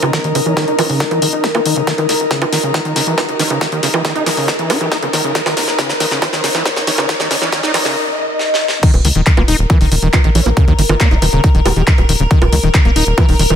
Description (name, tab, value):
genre	psychedelic trance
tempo	138 BPM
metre	4/4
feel	straight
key	unclear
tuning	A4 = 440 Hz
part	evolving wavetable pad	sustained chords	0.0-13.6 s	Bb4	-22 LUFS	equal	chorus, built-in reverb, sidechain pumping
part	overdriven acid bass	riff	0.0-13.6 s	Db3 to Eb4	-19 LUFS	moving between left 6 dB and right 4 dB	distortion, auto-pan, sidechain pumping, ping-pong delay
part	tight sequencer bass	bass	0.0-13.6 s	Eb1 to Eb2	-18 LUFS	equal	high-pass filter
part	big-room dance drum kit	drums	0.0-13.6 s	bongos, crash cymbal, handclaps, hi-hat, snare drum	-18 LUFS	right 1 dB	high-pass filter on snare, studio reverb, high-pass filter on hats, high-pass filter on perc, high-pass filter on cymbals
part	riser and swell	sound effects	0.2-8.8 s	none	-23 LUFS	equal	none
part	airy breathy pad	texture	0.0-8.0 s	Eb4 to Bb5	-23 LUFS	left 2 dB	chorus, sidechain pumping
part	electronic kick drum	drums	0.1-13.3 s	none	-13 LUFS	equal	high-pass filter on kick, studio reverb
part	vowel-sweep wobble bass	second line	0.5-11.8 s	Db4 to G4	-29 LUFS	right 2 dB	none
room	light reverb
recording	high-pass filter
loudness	-12 LUFS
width	side -9 dB against mid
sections	0.0-8.8 A section; 8.8-13.6 B section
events	build-up 0.0-8.8; drum fill 0.0-8.0, 8.4-8.8; filter sweep on acid bass 0.0-8.8; filter sweep 0.0-8.8; riser 0.2-8.0; swell 8.0-8.8; drop 8.8-13.6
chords	0.0 Eb5